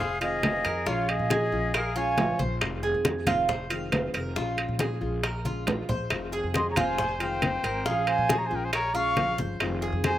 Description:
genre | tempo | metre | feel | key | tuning
latin, Cuban son and guajira | 137 BPM | 4/4 | straight | F minor | A4 = 440 Hz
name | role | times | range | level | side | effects
concert flute | melody | 0.0-2.4, 6.6-10.2 s | Db5 to Db6 | -30 LUFS | equal | none
bright trumpet | second line | 0.0-2.4, 6.5-10.2 s | F4 to F5 | -33 LUFS | left 4 dB | slapback echo
nylon-string guitar | accompaniment | 0.0-10.2 s | C3 to F4 | -35 LUFS | left 3 dB | none
Cuban tres | arpeggios | 0.0-10.2 s | F4 to F5 | -30 LUFS | right 4 dB | slapback echo
upright bass | bass | 0.0-10.2 s | F1 to Bb2 | -34 LUFS | equal | none
bongos | percussion | 0.0-10.2 s | none | -34 LUFS | left 5 dB | slapback echo
congas | percussion | 0.2-10.2 s | none | -32 LUFS | left 1 dB | none
timbales | percussion | 0.2-10.2 s | none | -31 LUFS | right 3 dB | none
room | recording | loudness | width
little or no reverb | recorded outdoors, with no room sound | -24 LUFS | side -12 dB against mid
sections
0.0-10.2 A section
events
drum fill 5.5-6.1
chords
0.0 Fm7; 0.9 Bbm7; 2.6 Fm7; 4.4 Bbm7; 6.1 Fm7; 7.9 Bbm7; 9.6 Fm7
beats
0.43 | 0.87 1.31 1.74 2.18 | 2.62 3.05 3.49 3.93 | 4.36 4.80 5.24 5.67 | 6.11 6.55 6.99 7.42 | 7.86 8.29 8.73 9.17 | 9.61 10.04

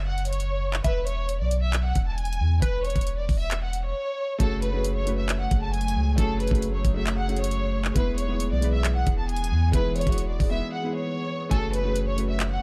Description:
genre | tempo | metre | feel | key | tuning
hip hop, trap | 135 BPM | 4/4 | half-time | F# minor | A4 = 440 Hz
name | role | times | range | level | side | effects
glassy wavetable pluck | second line | 0.0-4.4, 11.5-12.6 s | B4 to G#5 | -39 LUFS | equal | chorus, tape echo
long sustained 808-style bass | bass | 0.0-12.6 s | E1 to E2 | -28 LUFS | equal | none
warm symphonic violin section | melody | 0.1-12.6 s | A4 to A5 | -33 LUFS | equal | low-pass filter, tape echo
trap drum kit | drums | 0.2-12.5 s | handclaps, hi-hat, kick drum | -29 LUFS | equal | none
felt-muted upright piano | accompaniment | 4.4-12.6 s | G#3 to B4 | -34 LUFS | equal | low-pass filter
warbly tape-like pad | sustained chords | 5.5-12.6 s | E3 to G#4 | -38 LUFS | equal | chorus, built-in reverb, phaser
room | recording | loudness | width
digital ambience | none | -25 LUFS | mono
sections
0.0-4.4 A section; 4.4-12.6 B section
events
break 10.6-11.5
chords
0.0 F#5; 0.8 E5; 4.4 F#madd9; 8.0 E; 11.5 F#madd9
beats
0.40 | 0.85 1.29 1.73 2.18 | 2.62 3.07 3.51 3.96 | 4.40 4.85 5.29 5.73 | 6.18 6.62 7.07 7.51 | 7.96 8.40 8.85 9.29 | 9.73 10.18 10.62 11.07 | 11.51 11.96 12.40

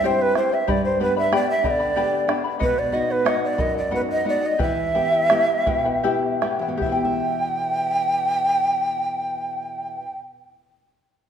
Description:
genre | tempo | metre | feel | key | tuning
andean folk, Andean ensemble | 50-62 BPM (dotted quarters) | 6/8 | straight | E minor | A4 = 440 Hz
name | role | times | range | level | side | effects
breathy bright large quena | melody | 0.0-10.2 s | B4 to G5 | -21 LUFS | right 1 dB | none
charango | accompaniment | 0.0-10.4 s | E4 to B5 | -26 LUFS | left 5 dB | none
flamenco guitar | accompaniment | 0.0-10.4 s | E2 to E5 | -27 LUFS | equal | none
bombo | percussion | 0.0-7.2 s | none | -28 LUFS | right 2 dB | none
room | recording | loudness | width
wet recital hall reverb, RT60 1.4 s | minimal, uncompressed stereo recording | -19 LUFS | side -8 dB against mid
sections
0.0-6.8 A section; 6.8-11.3 B section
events
slowing down 2.6-6.8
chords
0.0 C; 0.7 G; 2.6 B; 4.6 Em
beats
| 0.68 1.65 | 2.61 3.59 | 4.60 5.67 | 6.82 8.03 | 9.23

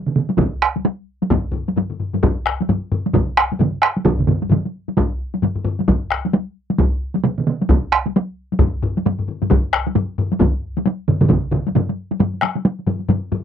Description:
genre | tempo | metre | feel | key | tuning
japanese traditional, taiko drum ensemble | 132 BPM | 4/4 | swing 60% on 16ths | none | none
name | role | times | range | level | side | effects
taiko ensemble | percussion | 0.1-11.9 s | none | -18 LUFS | right 5 dB | none
taiko ensemble | percussion | 0.3-13.4 s | none | -20 LUFS | equal | none
taiko ensemble | percussion | 0.4-11.4 s | none | -19 LUFS | equal | none
taiko ensemble | percussion | 1.3-13.4 s | none | -21 LUFS | left 4 dB | none
room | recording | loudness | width
light reverb | dry, close 1970s-style studio recording | -17 LUFS | side -9 dB against mid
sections
0.0-12.2 A section; 12.2-13.4 B section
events
speeding up 0.0-13.4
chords
none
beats
0.38 0.85 | 1.31 1.77 2.23 2.69 | 3.14 3.60 4.06 4.52 | 4.97 5.43 5.88 6.34 | 6.79 7.25 7.70 8.15 | 8.61 9.06 9.51 9.96 | 10.41 10.86 11.30 11.75 | 12.20 12.65 13.10

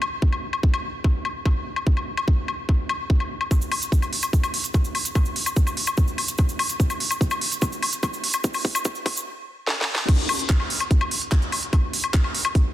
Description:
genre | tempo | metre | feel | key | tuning
trance | 146 BPM | 4/4 | straight | none | none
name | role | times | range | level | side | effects
garage drum kit | drums | 0.0-12.6 s | crash cymbal, handclaps, hi-hat, snare drum, woodblock | -25 LUFS | left 2 dB | none
electronic kick drum | drums | 0.2-12.6 s | none | -22 LUFS | equal | none
cabasa | percussion | 3.5-9.2 s | none | -31 LUFS | right 3 dB | none
room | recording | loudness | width
light reverb | dense, heavily limited modern master, high-pass filter | -20 LUFS | side -14 dB against mid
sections
0.0-3.5 A section; 3.5-10.1 B section; 10.1-12.7 C section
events
build-up 3.5-10.1; filter sweep 3.5-10.1; drum fill 6.8-9.3, 9.7-10.1; drop 10.1-12.7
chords
none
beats
| 0.22 0.63 1.04 1.46 | 1.87 2.28 2.69 3.10 | 3.51 3.92 4.33 4.74 | 5.15 5.57 5.98 6.39 | 6.80 7.21 7.62 8.03 | 8.44 8.85 9.26 9.67 | 10.09 10.50 10.91 11.32 | 11.73 12.14 12.55

